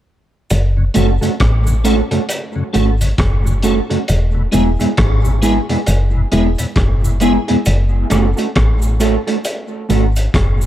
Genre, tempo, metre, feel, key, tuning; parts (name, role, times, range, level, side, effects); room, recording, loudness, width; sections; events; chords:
dub reggae; 67 BPM; 4/4; swing 60% on 16ths; F# minor; A4 = 437 Hz
woody FM bass; bass; 0.5-10.7 s; E1 to A1; -14 LUFS; equal
crunchy breakbeat drum kit; drums; 0.5-10.6 s; hi-hat, kick drum, rim click; -20 LUFS; equal
cabasa; percussion; 0.5-10.7 s; -32 LUFS; right 3 dB
tonewheel organ; accompaniment; 0.8-7.6 s; E2 to F#4; -22 LUFS; left 3 dB; chorus vibrato
mellow electric guitar; accompaniment; 0.9-10.0 s; G#3 to A4; -18 LUFS; right 2 dB; wide subtle chorus, tape echo
small room ambience; -13 LUFS; side -12 dB against mid
0.5-10.7 A section
0.5 F#m; 4.1 E; 7.7 F#m